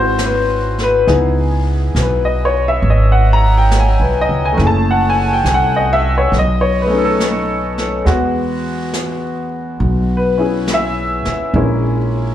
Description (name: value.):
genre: jazz ballad.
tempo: 69 BPM.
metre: 4/4.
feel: swing 67% on 8ths.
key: unclear.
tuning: A4 = 440 Hz.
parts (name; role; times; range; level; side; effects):
clear upright piano; accompaniment; 0.0-12.3 s; G#3 to A#5; -16 LUFS; left 2 dB; slapback echo.
upright bass; bass; 0.0-12.3 s; F#1 to E2; -16 LUFS; right 1 dB; none.
jazz brush drum kit; drums; 0.2-12.3 s; brushed snare drum, hi-hat, snare drum; -26 LUFS; left 1 dB; slapback echo.
room: little or no reverb.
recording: live gig heard through the venue's PA, club reverb.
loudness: -13 LUFS.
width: side -11 dB against mid.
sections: 0.0-12.3 A section.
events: none.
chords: 0.0 G#aug7; 1.1 C#m9; 4.6 F#m9; 6.3 B9; 8.1 Eadd9; 11.5 A#m7b5.